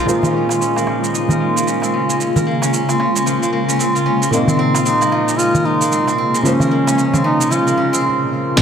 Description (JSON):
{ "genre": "organic downtempo", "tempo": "113 BPM", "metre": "4/4", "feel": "swing 60% on 16ths", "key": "Bb minor", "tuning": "A4 = 435 Hz", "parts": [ { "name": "granular cloud pad", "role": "sustained chords", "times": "0.0-8.6 s", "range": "Bb2 to C5", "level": "-20 LUFS", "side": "left 1 dB", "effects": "built-in reverb, sidechain pumping" }, { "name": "steel-string zither", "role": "arpeggios", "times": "0.0-8.6 s", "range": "F3 to Bb4", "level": "-19 LUFS", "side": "right 1 dB", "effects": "low-pass filter, digital delay" }, { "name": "felt-muted upright piano", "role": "accompaniment", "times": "0.1-8.6 s", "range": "Bb2 to C5", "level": "-21 LUFS", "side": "equal", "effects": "sidechain pumping, digital delay" }, { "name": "dusty soul sampler-style drum kit", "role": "drums", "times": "0.1-8.6 s", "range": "crash cymbal, hi-hat, shaker", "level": "-23 LUFS", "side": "right 6 dB", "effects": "overdrive, small room ambience" }, { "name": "darbuka", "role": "percussion", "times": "0.2-7.9 s", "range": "none", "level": "-22 LUFS", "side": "right 1 dB", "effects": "none" }, { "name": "mellow duduk", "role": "melody", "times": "4.9-8.6 s", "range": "Db4 to F4", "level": "-20 LUFS", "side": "equal", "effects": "vintage 12-bit sampler grit, tape echo" }, { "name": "upright bass", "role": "bass", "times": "8.6 s", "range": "Bb1", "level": "-25 LUFS", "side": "equal", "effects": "sidechain pumping" }, { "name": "electronic kick drum", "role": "drums", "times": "8.6 s", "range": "none", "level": "-13 LUFS", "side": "left 1 dB", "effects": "small room ambience" } ], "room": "moderate huge ambient reverb, RT60 4.0 s", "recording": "none", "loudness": "-14 LUFS", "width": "side -7 dB against mid", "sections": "0.1-8.6 A section", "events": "filter sweep on ambient pad 0.1-8.6; break 8.0-8.6", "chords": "0.1 Bbm7" }